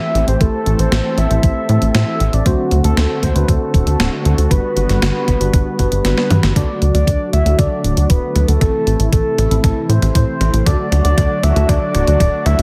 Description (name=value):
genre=synthwave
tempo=117 BPM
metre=4/4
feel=straight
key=unclear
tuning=A4 = 440 Hz
part: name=soft octave-layered synth lead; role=melody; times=0.0-12.6 s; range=F#4 to E5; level=-23 LUFS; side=equal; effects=chorus, tape echo
part: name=warm analog pad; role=sustained chords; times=0.0-12.6 s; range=C3 to A4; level=-25 LUFS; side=equal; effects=chorus, sidechain pumping
part: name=tine electric piano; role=stabs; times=0.0-12.6 s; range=G3 to C5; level=-28 LUFS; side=equal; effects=overdrive, low-pass filter
part: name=tight sequencer bass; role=bass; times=0.1-12.6 s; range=D1 to A2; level=-17 LUFS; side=equal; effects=tube saturation, sidechain pumping
part: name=clean 12-bit digital drum machine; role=drums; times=0.2-12.6 s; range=hi-hat, snare drum, toms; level=-25 LUFS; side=equal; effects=high-pass filter on hats, high-pass filter on snare, high-pass filter on toms, gated reverb
part: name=electronic kick drum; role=drums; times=0.4-12.3 s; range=none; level=-18 LUFS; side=equal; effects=none
room=light reverb, digital ambience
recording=none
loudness=-15 LUFS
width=mono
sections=0.0-6.6 A section; 6.6-12.6 B section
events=kick drops out 6.0-6.6; drum fill 6.0-6.6, 6.6-12.6; filter sweep on tine electric piano 6.6-12.6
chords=0.0 Am7; 2.5 D7; 4.5 Gmaj7; 6.6 D; 8.6 Am; 10.7 D